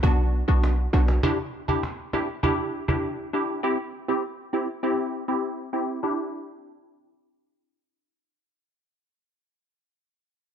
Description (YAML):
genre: dancehall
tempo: 100 BPM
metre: 4/4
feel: straight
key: E minor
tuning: A4 = 440 Hz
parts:
  - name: wavetable chord stab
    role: accompaniment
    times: 0.0-9.9 s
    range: B3 to G4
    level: -26 LUFS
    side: equal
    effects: phaser
  - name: short 808-style bass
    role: bass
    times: 0.0-1.2 s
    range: B1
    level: -20 LUFS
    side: equal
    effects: none
  - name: cajon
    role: drums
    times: 0.0-3.0 s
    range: none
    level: -29 LUFS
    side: equal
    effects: none
room: light reverb, small room ambience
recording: dark, warm production, low-pass filter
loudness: -23 LUFS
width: side -8 dB against mid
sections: 0.0-6.0 A section; 6.0-8.4 B section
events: filter sweep 0.0-6.0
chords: 0.0 Bm; 1.2 Em7; 3.6 C; 6.0 Em7